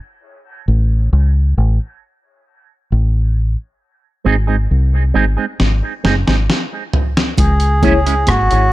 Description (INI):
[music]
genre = dub reggae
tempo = 67 BPM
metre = 4/4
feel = straight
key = C# harmonic minor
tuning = A4 = 439 Hz
[part]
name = deep dub fingered electric bass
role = bass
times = 0.7-8.7 s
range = F#1 to C#2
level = -13 LUFS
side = equal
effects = none
[part]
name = electric guitar with an envelope filter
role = accompaniment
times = 4.2-8.1 s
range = G#3 to G#4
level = -21 LUFS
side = right 7 dB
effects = high-pass filter, dub echo
[part]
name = dusty soul sampler-style drum kit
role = drums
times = 5.6-8.7 s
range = hi-hat, kick drum, rim click, snare drum, toms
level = -17 LUFS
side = equal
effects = none
[part]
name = melodica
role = melody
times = 7.4-8.7 s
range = F#4 to G#4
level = -16 LUFS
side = right 1 dB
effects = dub echo
[part]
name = congas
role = percussion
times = 7.4-8.5 s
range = none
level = -22 LUFS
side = right 2 dB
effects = dub echo
[part]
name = reed electric piano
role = stabs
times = 7.8-8.0 s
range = E4 to C#5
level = -20 LUFS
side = left 6 dB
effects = fast tremolo, high-pass filter, dub echo
[sound]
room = digital ambience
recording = echo-heavy mix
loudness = -13 LUFS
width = side -17 dB against mid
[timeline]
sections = 0.0-7.4 A section; 7.4-8.7 B section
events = break 0.0-7.4; filter sweep 0.0-3.8; drum fill 5.6-7.4; stop 6.5-7.4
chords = 0.2 A; 3.8 G#; 7.4 C#m